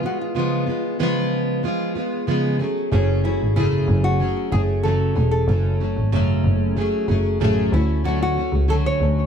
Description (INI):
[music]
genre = acoustic pop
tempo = 94 BPM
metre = 4/4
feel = straight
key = unclear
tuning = A4 = 438 Hz
[part]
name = nylon-string guitar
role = melody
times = 0.0-9.3 s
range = C#4 to C#5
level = -26 LUFS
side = left 2 dB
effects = plate reverb, ping-pong delay
[part]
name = fingerpicked plugged-in steel-string acoustic guitar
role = accompaniment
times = 0.0-9.3 s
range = F#2 to G#4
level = -21 LUFS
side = equal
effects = double-tracked left and right
[part]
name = clear double bass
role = bass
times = 2.9-9.3 s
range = E1 to D2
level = -20 LUFS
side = equal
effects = none
[sound]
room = light reverb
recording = dark, warm production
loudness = -18 LUFS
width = side -7 dB against mid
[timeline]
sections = 0.0-9.3 A section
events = none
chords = 0.0 C#7; 2.6 F#madd9; 7.7 Dmaj7